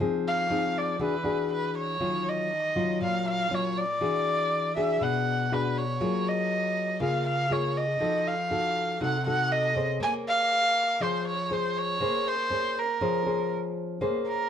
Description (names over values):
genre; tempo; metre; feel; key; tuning
bossa nova; 120 BPM; 4/4; straight; Bb minor; A4 = 440 Hz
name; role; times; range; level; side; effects
nylon-string guitar; accompaniment; 0.0-14.5 s; Bb2 to C5; -28 LUFS; left 2 dB; none
dark erhu; melody; 0.3-14.5 s; Bb4 to Ab5; -27 LUFS; right 1 dB; none
room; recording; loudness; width
moderate studio reverb, RT60 0.9 s; band playing live in one room; -25 LUFS; side -8 dB against mid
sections
0.0-14.0 A section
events
none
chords
0.0 Fm7; 1.0 E9; 2.0 Ebm9; 4.0 E9; 6.0 Gbmaj9; 8.0 F7b9; 10.0 Bbm9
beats
| 0.00 0.50 1.00 1.50 | 2.00 2.50 3.00 3.50 | 4.00 4.50 5.00 5.50 | 6.00 6.50 7.00 7.50 | 8.00 8.50 9.00 9.50 | 10.01 10.51 11.01 11.51 | 12.01 12.51 13.01 13.52 | 14.02